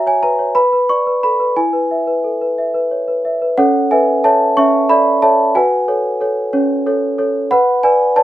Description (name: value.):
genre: classical, lullaby for celesta.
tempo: 61 BPM (dotted quarters).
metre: 6/8.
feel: straight.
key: A major.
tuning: A4 = 440 Hz.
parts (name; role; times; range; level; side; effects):
celesta; solo; 0.0-8.2 s; C#4 to C#6; -12 LUFS; equal; none.
room: light reverb.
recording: none.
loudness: -12 LUFS.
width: side -14 dB against mid.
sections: 0.0-3.6 A section; 3.6-8.2 B section.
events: none.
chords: 0.0 F#5; 0.6 Bm; 1.6 E; 3.6 A/C#; 5.5 F#m; 7.5 Bm.